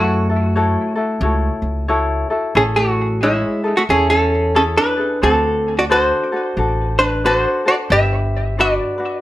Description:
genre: Hawaiian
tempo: 90 BPM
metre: 4/4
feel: swing 61% on 8ths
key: unclear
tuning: A4 = 440 Hz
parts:
  - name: hollow-body jazz guitar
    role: melody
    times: 0.0-9.2 s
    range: G#3 to E5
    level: -16 LUFS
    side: equal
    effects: analog delay
  - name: ukulele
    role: accompaniment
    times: 0.0-9.2 s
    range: D4 to C#5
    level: -21 LUFS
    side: left 2 dB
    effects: none
  - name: upright bass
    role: bass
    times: 0.0-8.8 s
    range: G1 to F#2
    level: -20 LUFS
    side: equal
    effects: none
room: moderate studio reverb, RT60 0.7 s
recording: none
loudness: -14 LUFS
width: side -15 dB against mid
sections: 0.0-2.6 A section; 2.6-9.2 B section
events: none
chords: 0.0 F#m7; 2.6 Amaj7; 5.2 D7; 7.9 Gmaj7

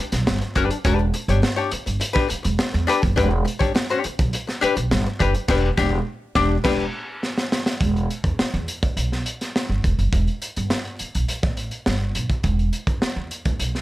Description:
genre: funk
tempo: 104 BPM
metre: 4/4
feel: straight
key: E dorian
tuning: A4 = 440 Hz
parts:
  - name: archtop guitar, miked and amplified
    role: accompaniment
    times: 0.0-6.9 s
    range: D4 to C#5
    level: -22 LUFS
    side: left 5 dB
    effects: wah, plate reverb
  - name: upright bass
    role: bass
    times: 0.1-13.8 s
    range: E1 to E2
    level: -23 LUFS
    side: right 1 dB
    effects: none
  - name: crunchy breakbeat drum kit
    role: drums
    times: 0.1-13.8 s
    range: crash cymbal, hi-hat, kick drum, snare drum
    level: -24 LUFS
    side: right 1 dB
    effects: none
room: little or no reverb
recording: none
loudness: -20 LUFS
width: side -16 dB against mid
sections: 0.0-7.8 A section; 7.8-13.8 B section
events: band accent 5.5-7.8; drum fill 7.2-7.8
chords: 0.0 Em7; 7.8 Em

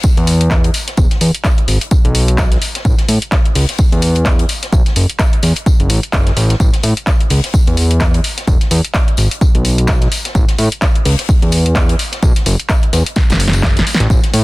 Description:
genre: piano house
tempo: 128 BPM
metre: 4/4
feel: swing 58% on 16ths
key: A major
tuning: A4 = 440 Hz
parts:
  - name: electronic kick drum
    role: drums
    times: 0.0-14.2 s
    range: none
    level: -13 LUFS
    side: equal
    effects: none
  - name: open jazz drum kit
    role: drums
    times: 0.0-14.4 s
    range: hi-hat, snare drum, tambourine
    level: -27 LUFS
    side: left 4 dB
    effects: sidechain pumping on hats, high-pass filter on hats, high-pass filter on snare, sidechain pumping on perc, high-pass filter on perc, high-pass filter on room
  - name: fat analog bass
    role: bass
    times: 0.2-14.4 s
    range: E1 to A2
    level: -13 LUFS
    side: equal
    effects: tube saturation, sidechain pumping
  - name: house drum kit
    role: drums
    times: 0.2-14.4 s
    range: handclaps, hi-hat, snare drum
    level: -19 LUFS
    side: equal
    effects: none
room: studio ambience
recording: dense, heavily limited modern master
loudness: -11 LUFS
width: side -21 dB against mid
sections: 0.0-14.4 A section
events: drum fill 13.2-14.1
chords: none

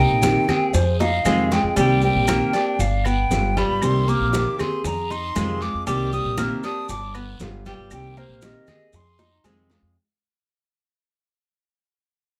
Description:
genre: latin, Cuban son and guajira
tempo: 117 BPM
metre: 4/4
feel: straight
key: C minor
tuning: A4 = 440 Hz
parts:
  - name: hollow concert flute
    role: melody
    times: 0.0-9.5 s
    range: C5 to Eb6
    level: -27 LUFS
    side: equal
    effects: plate reverb
  - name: nylon-string guitar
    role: accompaniment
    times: 0.0-10.0 s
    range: C3 to G4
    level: -27 LUFS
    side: equal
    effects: none
  - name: Cuban tres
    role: arpeggios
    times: 0.0-9.9 s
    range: G3 to Ab4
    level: -30 LUFS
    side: equal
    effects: none
  - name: upright bass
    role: bass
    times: 0.0-9.9 s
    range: G1 to F2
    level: -26 LUFS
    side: equal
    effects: none
  - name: bongos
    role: percussion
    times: 0.2-9.8 s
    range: none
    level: -34 LUFS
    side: equal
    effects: none
  - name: congas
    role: percussion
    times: 0.2-10.0 s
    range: none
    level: -32 LUFS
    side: equal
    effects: none
  - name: guiro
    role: percussion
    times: 0.2-10.0 s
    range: none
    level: -40 LUFS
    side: equal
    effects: none
  - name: maracas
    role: percussion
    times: 0.2-10.0 s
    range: none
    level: -39 LUFS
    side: equal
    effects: none
  - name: claves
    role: percussion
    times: 0.5-9.7 s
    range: none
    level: -37 LUFS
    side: equal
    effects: none
room: moderate studio reverb, RT60 0.5 s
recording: none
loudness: -21 LUFS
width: mono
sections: 0.0-1.8 A section; 1.8-10.0 B section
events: drum fill 1.0-1.8, 9.2-10.0; fade-out 1.8-10.0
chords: 0.0 Cm7; 0.7 Fm7; 1.8 Cm7; 2.8 G7; 3.8 Cm7; 4.8 Fm7; 5.9 Cm7; 6.9 G7; 7.9 Cm7; 8.9 Fm7

